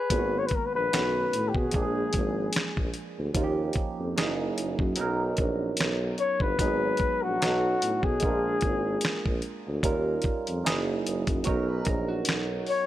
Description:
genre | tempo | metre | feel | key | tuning
R&B, neo-soul | 74 BPM | 4/4 | swing 56% on 16ths | unclear | A4 = 439 Hz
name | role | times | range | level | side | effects
breathy flugelhorn | melody | 0.0-12.9 s | F#4 to C#5 | -28 LUFS | left 4 dB | none
electric guitar at the edge of break-up | second line | 0.0-0.3, 11.5-12.9 s | F#4 to C#5 | -38 LUFS | right 2 dB | none
barky tine electric piano | accompaniment | 0.1-12.9 s | D#3 to A#4 | -31 LUFS | right 5 dB | phaser
warm tuba | bass | 0.1-12.6 s | F#1 to B2 | -30 LUFS | equal | none
dusty soul sampler-style drum kit | drums | 0.1-12.9 s | finger snaps, hi-hat, kick drum, snare drum | -29 LUFS | equal | none
room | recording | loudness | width
little or no reverb | none | -25 LUFS | side -13 dB against mid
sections
0.1-12.9 A section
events
none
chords
0.1 G#m9; 0.9 B9; 1.7 A#7; 3.3 D#9; 4.2 F#13; 5.0 Bmaj9; 6.6 G#m9; 7.4 B9; 8.2 A#7; 9.8 D#9; 10.6 F#13; 11.5 Bmaj9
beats
| 0.10 0.91 1.72 2.54 | 3.35 4.16 4.97 5.78 | 6.59 7.40 8.21 9.02 | 9.83 10.64 11.45 12.27

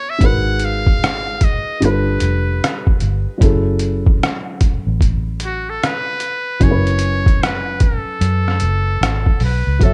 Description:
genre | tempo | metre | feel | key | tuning
lo-fi hip hop | 75 BPM | 4/4 | swing 62% on 16ths | F# dorian | A4 = 440 Hz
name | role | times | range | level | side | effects
trumpet with metal mute | melody | 0.0-9.9 s | F#4 to F#5 | -25 LUFS | equal | low-pass filter, plate reverb
felt-muted upright piano | accompaniment | 0.0-9.9 s | B2 to G#5 | -25 LUFS | equal | low-pass filter, plate reverb
vintage muted fingered electric bass | bass | 0.2-9.9 s | F1 to F#2 | -21 LUFS | equal | none
trip hop sampler-style drum kit | drums | 0.2-9.9 s | hi-hat, kick drum, rim click | -18 LUFS | equal | none
room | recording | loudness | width
light reverb | none | -17 LUFS | mono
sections
0.0-9.8 A section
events
none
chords
0.2 G#m7; 1.8 G9; 3.4 F#m7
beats
| 0.21 1.01 1.81 2.61 | 3.41 4.21 5.01 5.81 | 6.61 7.41 8.21 9.01 | 9.81

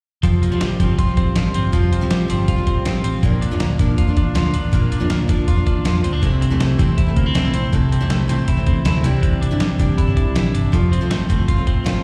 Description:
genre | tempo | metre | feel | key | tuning
jangly indie pop | 160 BPM | 4/4 | straight | F major | A4 = 441 Hz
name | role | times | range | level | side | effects
picked steel-string acoustic guitar | accompaniment | 0.2-12.0 s | Bb2 to F4 | -28 LUFS | equal | slapback echo
twelve-string electric guitar | arpeggios | 0.2-12.0 s | Bb2 to F4 | -23 LUFS | equal | subtle chorus, digital delay
vintage muted fingered electric bass | bass | 0.2-12.0 s | E1 to F2 | -23 LUFS | equal | none
dusty soul sampler-style drum kit | drums | 0.2-11.9 s | hi-hat, kick drum, snare drum | -22 LUFS | equal | none
room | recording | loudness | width
digital ambience | live gig heard through the venue's PA, recital hall reverb | -18 LUFS | mono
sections
0.2-12.0 A section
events
none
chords
0.2 Fsus2; 3.2 Bb; 6.2 Am; 9.0 Cadd9; 10.7 F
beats
| 0.23 0.61 0.98 1.36 | 1.73 2.11 2.48 2.86 | 3.23 3.60 3.98 4.35 | 4.73 5.10 5.48 5.85 | 6.23 6.60 6.98 7.35 | 7.73 8.10 8.48 8.85 | 9.23 9.60 9.98 10.35 | 10.73 11.11 11.48 11.86

